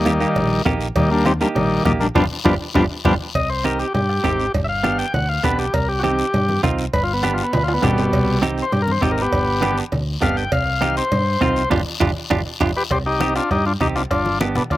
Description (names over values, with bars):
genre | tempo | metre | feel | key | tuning
latin, cumbia | 201 BPM | 4/4 | straight | C harmonic minor from 3.3 s | A4 = 441 Hz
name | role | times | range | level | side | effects
overdriven combo organ | melody | 0.0-14.8 s | B2 to G5 | -20 LUFS | left 1 dB | slapback echo
breathy clarinet | second line | 0.0-3.1 s | Bb3 to Eb4 | -25 LUFS | left 4 dB | slapback echo
deep dub fingered electric bass | bass | 0.0-14.8 s | G1 to G2 | -24 LUFS | equal | none
semi-hollow electric guitar | accompaniment | 0.1-14.6 s | Bb3 to G4 | -22 LUFS | right 4 dB | slapback echo
bombo | percussion | 0.1-14.8 s | none | -25 LUFS | left 1 dB | none
congas | percussion | 0.1-14.7 s | none | -27 LUFS | left 1 dB | none
guiro | percussion | 0.1-14.8 s | none | -33 LUFS | left 6 dB | none
cowbell and timbales | percussion | 0.4-14.8 s | none | -27 LUFS | right 5 dB | none
room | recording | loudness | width
little or no reverb | recorded outdoors, with no room sound | -17 LUFS | side -15 dB against mid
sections
0.0-3.3 A section; 3.3-12.9 B section; 12.9-14.8 C section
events
band accent 2.2-3.3, 11.7-12.9; drum fill 2.6-3.3, 7.5-8.1, 12.0-12.9; transistor combo organ solo 3.3-12.9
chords
0.0 Eb; 2.2 G7; 3.3 Cm; 4.5 G7; 5.7 Cm; 6.9 G; 8.1 Cm; 9.3 G; 10.5 Cm; 11.7 G5; 12.9 Cm; 14.1 G7